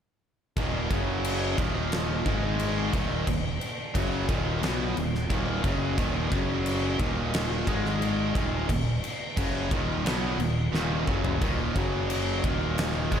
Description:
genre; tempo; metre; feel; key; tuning
hard rock; 88 BPM; 4/4; straight; Eb minor; A4 = 440 Hz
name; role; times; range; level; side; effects
distorted electric guitar; riff; 0.6-13.2 s; Eb2 to Cb4; -31 LUFS; left 7 dB; distortion
high-gain distorted guitar; riff; 0.6-13.2 s; Eb2 to Cb4; -31 LUFS; right 9 dB; distortion
modern bright picked electric bass; bass; 0.6-13.2 s; Eb1 to Cb2; -32 LUFS; equal; none
huge arena drum kit; drums; 0.6-13.2 s; crash cymbal, kick drum, snare drum, toms; -29 LUFS; equal; none
room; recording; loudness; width
moderate lush hall reverb, RT60 2.7 s; big arena sound; -25 LUFS; side -8 dB against mid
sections
0.6-13.2 A section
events
drum fill 10.7-11.4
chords
0.6 Eb5; 0.9 Gb5; 1.6 Eb5; 2.3 Ab5; 2.9 Ebm; 6.3 Gb5; 7.0 Eb5; 7.7 Ab5; 8.4 Ebm; 11.8 Gb5; 12.4 Eb5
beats
| 0.57 1.24 1.92 2.59 | 3.27 3.95 4.62 5.30 | 5.98 6.66 7.33 8.01 | 8.69 9.37 10.05 10.73 | 11.41 12.10 12.78

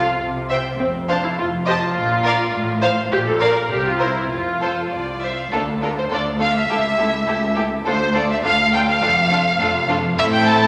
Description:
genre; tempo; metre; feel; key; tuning
quick classical-period movement for string orchestra; 103 BPM; 2/4; straight; F major, D minor from 5.5 s; A4 = 440 Hz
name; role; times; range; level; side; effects
rich symphonic violin section; melody; 0.0-10.7 s; A4 to A5; -23 LUFS; equal; none
rich chamber violin section; second line; 0.0-10.7 s; E4 to F5; -26 LUFS; equal; none
rich symphonic viola section; accompaniment; 0.0-10.7 s; A3 to Bb4; -25 LUFS; equal; none
rich studio double bass section; bass; 0.0-10.7 s; F1 to D2; -33 LUFS; equal; none
warm chamber cello section; bass; 0.0-10.7 s; C2 to C3; -27 LUFS; equal; none
room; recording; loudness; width
wet scoring stage reverb, RT60 1.8 s; none; -19 LUFS; mono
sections
0.0-5.5 A section; 5.5-10.7 B section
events
none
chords
0.2 C; 0.8 F; 1.4 F7; 2.0 Bb; 2.5 F/A; 3.1 Bb; 3.7 C7; 4.3 F5; 5.5 Dm; 6.7 A7/C#; 7.9 Dm; 9.0 Dm/F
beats
0.19 | 0.79 1.39 | 1.97 2.54 | 3.12 3.71 | 4.31 4.92 | 5.53 6.12 | 6.70 7.29 | 7.87 8.45 | 9.03 9.61 | 10.18

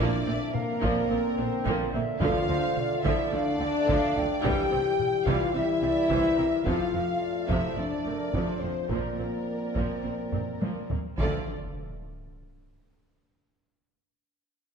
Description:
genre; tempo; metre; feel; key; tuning
cinematic, epic orchestral film score; 108 BPM; 4/4; straight; D minor; A4 = 440 Hz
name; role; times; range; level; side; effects
rich symphonic violin section; melody; 0.0-11.5 s; Bb4 to G5; -39 LUFS; left 2 dB; none
rich symphonic violin section; second line; 0.0-11.5 s; Bb4 to G5; -37 LUFS; right 1 dB; none
small flute group; second line; 0.0-10.9 s; A4 to G5; -36 LUFS; right 1 dB; none
rich symphonic viola section; accompaniment; 0.0-11.5 s; C3 to A4; -34 LUFS; right 2 dB; none
clear trombone section; sustained chords; 0.0-11.4 s; D3 to C4; -35 LUFS; right 4 dB; none
mellow French horn section; sustained chords; 0.0-11.4 s; Bb3 to G4; -29 LUFS; left 3 dB; none
rich chamber cello section; bass; 0.0-11.5 s; F2 to D3; -36 LUFS; right 3 dB; none
warm studio double bass section; bass; 0.0-11.5 s; F1 to D2; -36 LUFS; right 4 dB; none
taiko ensemble; drums; 0.5-12.3 s; none; -34 LUFS; equal; none
timpani; percussion; 2.2-3.0, 11.2-11.5 s; D3; -38 LUFS; equal; none
sub drop; sound effects; 11.3-13.5 s; none; -42 LUFS; equal; none
room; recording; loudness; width
wet scoring stage reverb, RT60 2.0 s; none; -25 LUFS; side -6 dB against mid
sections
0.0-11.2 A section; 11.2-13.5 B section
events
drum fill 10.3-11.2; impact 11.2-13.5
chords
0.0 Bbadd9; 2.2 Dm; 4.4 C; 6.7 F; 8.9 Bbadd9; 11.2 Dm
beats
0.54 1.10 1.65 | 2.21 2.76 3.32 3.88 | 4.43 4.99 5.54 6.10 | 6.65 7.21 7.77 8.33 | 8.90 9.47 10.04 10.61 | 11.19 11.77 12.36 12.94

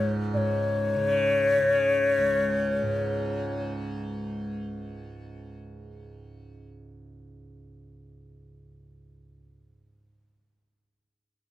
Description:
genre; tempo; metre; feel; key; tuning
indian classical, Hindustani; free time; none; none; unclear; A4 = 440 Hz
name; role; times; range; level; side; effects
breathy hollow bansuri; melody; 0.0-3.7 s; C#5 to D5; -24 LUFS; left 3 dB; none
tanpura; drone; 0.0-10.0 s; C#2 to C#3; -31 LUFS; right 2 dB; none
room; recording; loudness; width
moderate studio reverb, RT60 0.6 s; close, detailed microphones; -24 LUFS; side -14 dB against mid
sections
0.3-2.9 A section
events
none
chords
none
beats
free time

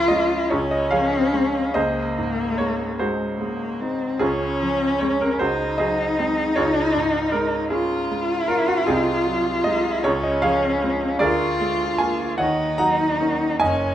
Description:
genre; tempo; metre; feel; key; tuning
classical, romantic duo for cello and grand piano; 50 BPM (dotted quarters); 6/8; uneven beats, rubato; Db major; A4 = 440 Hz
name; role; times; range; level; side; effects
warm cello; melody; 0.0-13.9 s; Ab3 to F4; -22 LUFS; left 2 dB; none
clear concert grand piano; accompaniment; 0.0-13.9 s; Gb1 to Bb5; -22 LUFS; right 2 dB; none
room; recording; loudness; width
moderate recital hall reverb, RT60 1.4 s; close, detailed microphones; -19 LUFS; side -11 dB against mid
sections
0.0-13.9 A section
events
none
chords
0.0 Db; 1.8 Ab7/Db; 4.2 Db; 5.4 Ab7/Db; 6.6 Db; 8.9 Ab7/C; 10.1 Db; 11.2 Bb7/D; 12.4 Ebm7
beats
0.52 | 1.75 3.00 | 4.21 5.40 | 6.57 7.74 | 8.90 10.07 | 11.23 12.41 | 13.63

